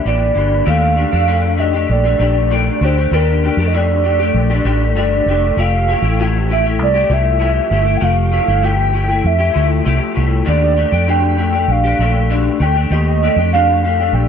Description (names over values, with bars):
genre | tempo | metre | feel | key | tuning
indie pop, bedroom pop | 98 BPM | 4/4 | straight | unclear | A4 = 440 Hz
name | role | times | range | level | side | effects
warbly nostalgic lead | melody | 0.0-14.3 s | Bb4 to G5 | -17 LUFS | right 2 dB | wide subtle chorus, slapback echo
electric guitar through a small old amp | accompaniment | 0.0-14.3 s | C3 to G4 | -18 LUFS | left 6 dB | ensemble chorus, vibrato effect
vintage muted fingered electric bass | bass | 0.1-14.3 s | F1 to F2 | -16 LUFS | right 1 dB | none
room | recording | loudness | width
little or no reverb | none | -12 LUFS | side -7 dB against mid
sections
0.7-14.3 A section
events
none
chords
0.0 C9; 0.7 Ebmaj9#11; 5.6 Fmaj9; 10.5 Ebmaj9#11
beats
0.06 | 0.67 1.28 1.89 2.51 | 3.12 3.73 4.34 4.96 | 5.57 6.18 6.79 7.40 | 8.02 8.63 9.24 9.85 | 10.46 11.08 11.69 12.30 | 12.91 13.53 14.14